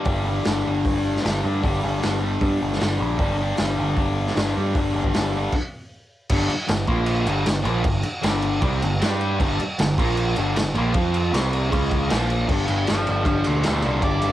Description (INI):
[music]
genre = garage rock duo or trio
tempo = 155 BPM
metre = 4/4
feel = straight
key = G minor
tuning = A4 = 439 Hz
[part]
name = fuzz guitar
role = riff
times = 0.0-14.3 s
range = G2 to G4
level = -23 LUFS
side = left 1 dB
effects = distortion, cassette tape
[part]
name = growling picked electric bass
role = bass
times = 0.1-14.3 s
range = G1 to G2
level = -24 LUFS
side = equal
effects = overdrive
[part]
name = raw garage drum kit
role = drums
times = 0.1-14.3 s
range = crash cymbal, hi-hat, kick drum, ride cymbal, snare drum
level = -25 LUFS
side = equal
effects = cassette tape
[part]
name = octave-fuzz lead guitar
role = melody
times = 12.9-14.3 s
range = Bb4 to F5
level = -26 LUFS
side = right 1 dB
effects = distortion
[sound]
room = light reverb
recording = home recording on cassette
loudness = -19 LUFS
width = side -13 dB against mid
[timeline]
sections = 0.0-6.3 A section; 6.3-12.5 B section; 12.5-14.3 C section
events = stop 5.5-6.3; lead electric guitar solo 12.5-14.3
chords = 0.0 G5; 6.9 Bb5; 7.3 Gm; 10.0 Bb5; 10.4 Gm; 10.9 F5; 11.3 C5; 11.7 C#5; 12.1 Bb5; 12.5 Gm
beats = | 0.06 0.46 0.85 1.24 | 1.63 2.02 2.42 2.81 | 3.20 3.59 3.98 4.37 | 4.76 5.15 5.53 5.92 | 6.31 6.70 7.08 7.47 | 7.86 8.24 8.63 9.01 | 9.40 9.78 10.17 10.55 | 10.94 11.33 11.71 12.10 | 12.49 12.87 13.26 13.65 | 14.04